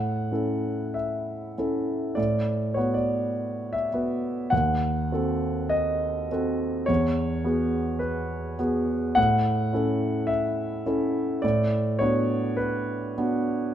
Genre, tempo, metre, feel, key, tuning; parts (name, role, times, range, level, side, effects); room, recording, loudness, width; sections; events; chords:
classical, romantic nocturne for solo piano; 45-54 BPM; 4/4; rubato; A major; A4 = 438 Hz
warm concert grand piano; solo; 0.0-13.7 s; D#2 to F#5; -23 LUFS; equal
moderate recital hall reverb, RT60 1.4 s; dark, warm production; -23 LUFS; side -10 dB against mid
0.0-13.7 A section
0.0 A; 2.2 B5/A; 4.5 D#dim7; 6.9 Eadd9; 9.2 A; 11.4 Bm/A